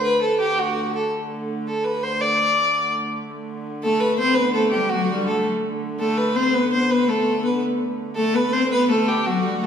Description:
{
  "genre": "medieval",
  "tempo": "111 BPM (dotted quarters)",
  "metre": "6/8",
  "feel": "straight",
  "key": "D mixolydian",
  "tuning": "A4 = 440 Hz",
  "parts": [
    { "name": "warm fiddle", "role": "melody", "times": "0.0-9.7 s", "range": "F#4 to D5", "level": "-20 LUFS", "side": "right 1 dB", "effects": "none" },
    { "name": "dark hurdy-gurdy", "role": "drone", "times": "0.0-9.7 s", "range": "D3 to A3", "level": "-30 LUFS", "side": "right 2 dB", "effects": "none" },
    { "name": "rich viola da gamba", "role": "second line", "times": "3.8-9.7 s", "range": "F#3 to C4", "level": "-22 LUFS", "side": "left 3 dB", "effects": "none" }
  ],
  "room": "wet recital hall reverb, RT60 1.7 s",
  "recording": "recorded in a church or concert hall",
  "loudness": "-18 LUFS",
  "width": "side -8 dB against mid",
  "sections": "0.0-3.3 A section; 3.3-9.7 A section",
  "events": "none",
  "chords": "none"
}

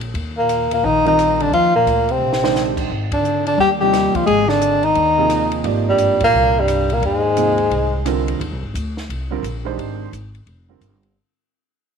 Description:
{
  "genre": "modal jazz",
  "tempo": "174 BPM",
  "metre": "4/4",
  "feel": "swing 63% on 8ths",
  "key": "unclear",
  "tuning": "A4 = 438 Hz",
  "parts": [
    { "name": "upright bass", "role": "bass", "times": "0.0-11.1 s", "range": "F1 to Eb2", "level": "-25 LUFS", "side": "equal", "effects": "none" },
    { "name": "compact cocktail drum kit", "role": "drums", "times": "0.0-11.1 s", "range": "crash cymbal, hi-hat, kick drum, ride cymbal, rim click, snare drum", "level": "-31 LUFS", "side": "equal", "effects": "none" },
    { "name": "dark bass clarinet", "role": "second line", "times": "0.3-8.0 s", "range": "G2 to Ab3", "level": "-24 LUFS", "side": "left 8 dB", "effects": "none" },
    { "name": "mellow tenor saxophone", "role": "melody", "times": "0.4-8.0 s", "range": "G3 to Ab4", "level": "-16 LUFS", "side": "equal", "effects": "none" },
    { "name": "warm concert grand piano", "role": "accompaniment", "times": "1.0-11.1 s", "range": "C3 to D5", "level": "-24 LUFS", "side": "right 11 dB", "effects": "none" }
  ],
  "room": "moderate echo chamber reverb, RT60 1.7 s",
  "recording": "1960s-style stereo with parts hard left and right",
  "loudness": "-15 LUFS",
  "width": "side -6 dB against mid",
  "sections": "0.0-8.4 A section; 8.4-11.2 B section",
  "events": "drum fill 2.2-2.6; band accent 3.1, 6.2; fade-out 8.4-11.2",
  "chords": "0.0 Ebmaj9; 2.9 Abmaj9"
}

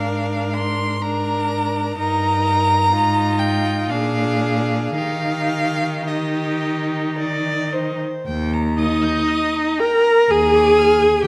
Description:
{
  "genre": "classical, slow romantic movement for string quartet",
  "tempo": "53-66 BPM",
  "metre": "3/4",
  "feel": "rubato",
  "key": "Eb major",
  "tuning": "A4 = 440 Hz",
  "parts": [
    { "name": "warm violin", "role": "melody", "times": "0.0-11.2 s", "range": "Eb5 to Ab6", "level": "-26 LUFS", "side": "equal", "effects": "none" },
    { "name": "rich violin", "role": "second line", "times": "0.0-11.3 s", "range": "F4 to Bb5", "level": "-28 LUFS", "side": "equal", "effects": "none" },
    { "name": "rich viola", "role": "accompaniment", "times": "0.0-11.3 s", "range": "D4 to Bb4", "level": "-22 LUFS", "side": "equal", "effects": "none" },
    { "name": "rich cello", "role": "bass", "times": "0.0-11.3 s", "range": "Eb2 to Eb3", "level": "-26 LUFS", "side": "equal", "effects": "none" }
  ],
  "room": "moderate recital hall reverb, RT60 1.4 s",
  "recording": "close, detailed microphones",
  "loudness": "-19 LUFS",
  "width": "mono",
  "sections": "0.0-8.3 A section; 8.3-11.3 A section",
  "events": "none",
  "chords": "0.0 Bb7/Ab; 2.0 Eb/G; 2.9 Fm7/Ab; 3.9 Bb7; 5.0 Eb; 10.3 Bb7/Eb"
}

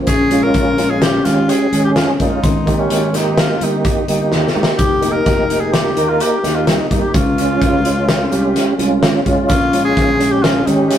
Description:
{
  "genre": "progressive instrumental, band music in an uneven meter",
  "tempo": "127 BPM",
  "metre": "5/4",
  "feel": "straight",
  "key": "unclear",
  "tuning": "A4 = 440 Hz",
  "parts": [
    { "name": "vibraphone with soft mallets", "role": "second line", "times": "0.0-11.0 s", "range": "C4 to Eb4", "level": "-20 LUFS", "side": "left 3 dB", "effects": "none" },
    { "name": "tonewheel organ", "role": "accompaniment", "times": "0.0-11.0 s", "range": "Ab3 to Bb4", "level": "-18 LUFS", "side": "right 3 dB", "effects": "chorus vibrato, slow rotary speaker" },
    { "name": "clear tenor saxophone", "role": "melody", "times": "0.1-11.0 s", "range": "Db4 to Bb4", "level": "-20 LUFS", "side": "left 1 dB", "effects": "none" },
    { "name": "sustaining fretless electric bass", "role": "bass", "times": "0.1-10.9 s", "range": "F1 to Db3", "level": "-22 LUFS", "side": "equal", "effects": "none" },
    { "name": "loose indie drum kit", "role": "drums", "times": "0.1-11.0 s", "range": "hi-hat, kick drum, snare drum", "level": "-18 LUFS", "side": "left 1 dB", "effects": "none" },
    { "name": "tube shaker", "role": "percussion", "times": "0.1-10.9 s", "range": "none", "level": "-39 LUFS", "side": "right 6 dB", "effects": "none" }
  ],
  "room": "moderate stone room reverb, RT60 1.0 s",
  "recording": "rough rehearsal-room recording",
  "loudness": "-12 LUFS",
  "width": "side -10 dB against mid",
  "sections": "0.0-11.0 A section",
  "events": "drum fill 4.3-4.8",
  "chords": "0.1 Bbm7; 2.4 Abmaj7; 4.8 Fsus2; 7.1 Dbmaj7; 9.5 Bbm7"
}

